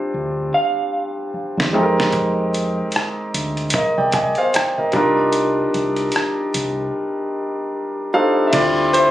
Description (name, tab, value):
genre	R&B, neo-soul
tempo	75 BPM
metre	4/4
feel	swing 58% on 16ths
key	unclear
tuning	A4 = 445 Hz
part	electric guitar through a small old amp	melody	0.0-1.7 s	E5 to F5	-21 LUFS	right 2 dB	lush chorus, slapback echo
part	clear concert grand piano	accompaniment	0.0-9.1 s	D3 to Ab5	-18 LUFS	equal	none
part	deep dub fingered electric bass	bass	0.1-9.1 s	Ab1 to F2	-26 LUFS	right 1 dB	none
part	dusty soul sampler-style drum kit	drums	1.6-9.1 s	crash cymbal, hi-hat, kick drum, rim click, snare drum	-22 LUFS	equal	none
room	light reverb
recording	recorded on a phone in the room, studio reverb, compression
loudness	-17 LUFS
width	side -13 dB against mid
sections	0.0-8.5 A section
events	drum fill 0.5-2.1; drums muted 6.9-8.5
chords	0.0 Dm11; 1.7 Fm11; 4.9 Cm11; 8.5 Dm11